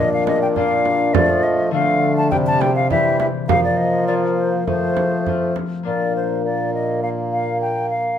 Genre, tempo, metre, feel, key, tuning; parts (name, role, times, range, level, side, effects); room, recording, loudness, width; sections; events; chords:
classical, renaissance-style consort dance; 102 BPM; 4/4; straight; Bb major; A4 = 441 Hz
mellow hollow silver concert flute; melody; 0.0-8.2 s; C5 to A5; -21 LUFS; left 2 dB
concert harp; accompaniment; 0.0-8.2 s; Bb2 to G4; -23 LUFS; left 8 dB
mellow bassoon; accompaniment; 0.0-8.2 s; G3 to D4; -23 LUFS; right 1 dB
clear trombone; bass; 0.0-8.2 s; Bb2 to F3; -23 LUFS; right 3 dB
frame drum; percussion; 0.3-5.8 s; -24 LUFS; right 9 dB
moderate recital hall reverb, RT60 1.6 s; close, detailed microphones; -16 LUFS; side -9 dB against mid
0.0-5.9 A section; 5.9-8.2 B section
0.0 Bb; 1.2 F; 2.3 C; 3.5 Fsus4; 4.7 F; 5.9 Bb